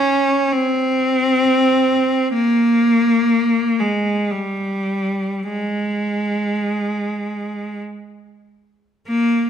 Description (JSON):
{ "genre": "classical, free, expressive piece for unaccompanied cello", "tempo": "free time", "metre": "none", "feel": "none", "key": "Ab major", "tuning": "A4 = 440 Hz", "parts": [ { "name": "clear cello", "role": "solo", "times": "0.0-9.5 s", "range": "G3 to Db4", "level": "-16 LUFS", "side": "equal", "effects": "none" } ], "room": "wet recital hall reverb, RT60 1.5 s", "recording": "none", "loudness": "-16 LUFS", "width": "side -8 dB against mid", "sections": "0.0-9.1 A section", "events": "none", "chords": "none", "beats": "free time" }